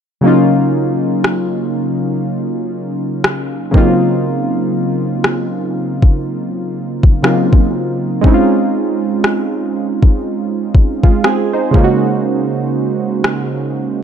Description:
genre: contemporary R&B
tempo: 60 BPM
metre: 4/4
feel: swing 58% on 16ths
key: unclear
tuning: A4 = 439 Hz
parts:
  - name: warm analog keys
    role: accompaniment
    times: 0.2-14.0 s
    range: Db3 to C5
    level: -14 LUFS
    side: right 1 dB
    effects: chorus
  - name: smooth R&B drum kit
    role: drums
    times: 1.2-13.5 s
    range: kick drum, rim click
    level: -12 LUFS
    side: left 1 dB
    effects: vintage 12-bit sampler grit
room: light reverb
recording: none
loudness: -12 LUFS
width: side -8 dB against mid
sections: 0.2-14.0 A section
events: none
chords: 0.2 Ebm7/Db; 3.7 Ebm13/Db; 8.2 Dbmaj7; 11.7 Gb6/Db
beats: | 0.24 1.24 2.24 3.24 | 4.24 5.24 6.24 7.24 | 8.24 9.24 10.24 11.24 | 12.24 13.24

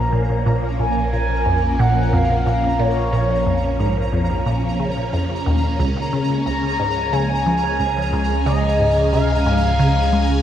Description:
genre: ambient, sequencer-driven space music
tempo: 90 BPM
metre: 4/4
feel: straight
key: Bb minor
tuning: A4 = 440 Hz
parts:
  - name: expressive portamento lead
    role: melody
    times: 0.0-10.4 s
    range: Db5 to Bb5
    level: -22 LUFS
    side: equal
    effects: wide subtle chorus, shimmer reverb, analog delay
  - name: phased string machine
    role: sustained chords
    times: 0.0-10.4 s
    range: Bb2 to Ab5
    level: -23 LUFS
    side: equal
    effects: ensemble chorus, phaser, shimmer reverb
  - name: resonant blip pluck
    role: riff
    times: 0.0-10.4 s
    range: Db2 to Ab3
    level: -21 LUFS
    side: equal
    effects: phaser, analog delay
  - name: fat analog bass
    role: bass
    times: 0.0-10.4 s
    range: Bb1 to Db2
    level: -23 LUFS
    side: equal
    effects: none
  - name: pulsing gated texture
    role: texture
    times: 0.0-10.4 s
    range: Bb5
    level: -30 LUFS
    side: right 3 dB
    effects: chorus, built-in reverb, shimmer reverb
room: moderate plate reverb, RT60 2.5 s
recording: echo-heavy mix, cassette tape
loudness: -16 LUFS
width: side -10 dB against mid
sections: 0.0-10.4 A section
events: none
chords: 0.0 Bbm; 5.8 Db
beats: | 0.46 1.13 1.79 2.46 | 3.13 3.79 4.46 5.13 | 5.79 6.46 7.13 7.79 | 8.46 9.13 9.79

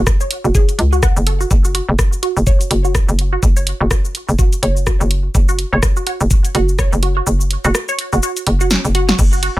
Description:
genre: minimal techno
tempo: 125 BPM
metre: 4/4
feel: swing 58% on 16ths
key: unclear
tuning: A4 = 440 Hz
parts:
  - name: hollow knocking FM bass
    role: bass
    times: 0.0-9.6 s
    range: F#1 to C#2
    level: -16 LUFS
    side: equal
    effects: sidechain pumping
  - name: electronic kick drum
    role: drums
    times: 0.1-9.3 s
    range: none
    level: -14 LUFS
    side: equal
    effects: small room ambience
  - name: punchy analog drum machine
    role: drums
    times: 0.1-9.5 s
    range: crash cymbal, hi-hat, rim click, shaker, snare drum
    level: -20 LUFS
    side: equal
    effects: overdrive, small room ambience
  - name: resonant blip pluck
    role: riff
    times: 0.2-9.5 s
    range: C#4 to F#5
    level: -22 LUFS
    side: right 1 dB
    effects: phaser, sidechain pumping, tape echo
room: little or no reverb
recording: none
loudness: -13 LUFS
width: side -16 dB against mid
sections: 0.0-9.2 A section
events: filter sweep on synth arpeggio sound 0.0-9.2; kick drops out 7.3-9.2; drum fill 8.7-9.2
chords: none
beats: 0.07 0.55 1.03 | 1.51 1.99 2.47 2.95 | 3.43 3.91 4.39 4.87 | 5.35 5.83 6.31 6.79 | 7.27 7.75 8.23 8.71 | 9.19

